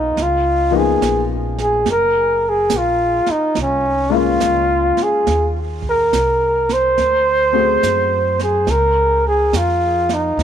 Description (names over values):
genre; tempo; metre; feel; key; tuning
jazz ballad; 70 BPM; 4/4; swing 66% on 8ths; unclear; A4 = 439 Hz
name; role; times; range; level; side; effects
breathy flugelhorn; melody; 0.0-10.4 s; Db4 to C5; -15 LUFS; right 1 dB; tape echo
warm baby grand piano; accompaniment; 0.0-8.7 s; F3 to G#4; -21 LUFS; left 15 dB; none
upright bass; bass; 0.0-10.4 s; Gb1 to F#2; -23 LUFS; right 1 dB; none
jazz brush drum kit; drums; 0.2-10.4 s; brushed snare drum, hi-hat, kick drum, snare drum; -27 LUFS; right 8 dB; none
room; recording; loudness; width
light reverb, small room ambience; 1960s-style stereo with parts hard left and right; -14 LUFS; side -9 dB against mid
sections
0.0-10.4 A section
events
none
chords
0.2 Db13; 1.9 Gbmaj9; 5.3 Eb5; 7.0 D7#11; 8.7 Db